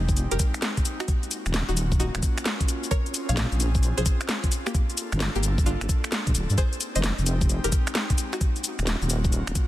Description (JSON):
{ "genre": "UK garage, two-step garage", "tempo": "131 BPM", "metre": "4/4", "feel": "swing 65% on 16ths", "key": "unclear", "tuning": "A4 = 439 Hz", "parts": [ { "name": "airy breathy pad", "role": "sustained chords", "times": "0.0-9.7 s", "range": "Ab3 to A4", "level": "-35 LUFS", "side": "equal", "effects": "chorus, sidechain pumping" }, { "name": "deep soft wobble bass", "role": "bass", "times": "0.0-9.5 s", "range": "D1 to G2", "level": "-25 LUFS", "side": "equal", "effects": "chorus, sidechain pumping" }, { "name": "electronic kick drum", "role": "drums", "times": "0.1-9.7 s", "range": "none", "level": "-24 LUFS", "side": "equal", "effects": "none" }, { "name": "garage drum kit", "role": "drums", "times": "0.1-9.7 s", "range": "cabasa, finger snaps, hi-hat, snare drum", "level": "-29 LUFS", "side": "left 1 dB", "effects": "none" }, { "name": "string-like resonator pluck", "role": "melody", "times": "0.3-8.4 s", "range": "Bb3 to F5", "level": "-34 LUFS", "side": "equal", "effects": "chorus, dub echo" } ], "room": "little or no reverb", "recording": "dense, heavily limited modern master", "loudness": "-22 LUFS", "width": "side -15 dB against mid", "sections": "0.0-9.7 A section", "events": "none", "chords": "0.0 Fm7; 1.1 Ebm7; 2.7 Bbm7; 4.5 Gm7; 6.6 Fm7; 8.4 Ebm7" }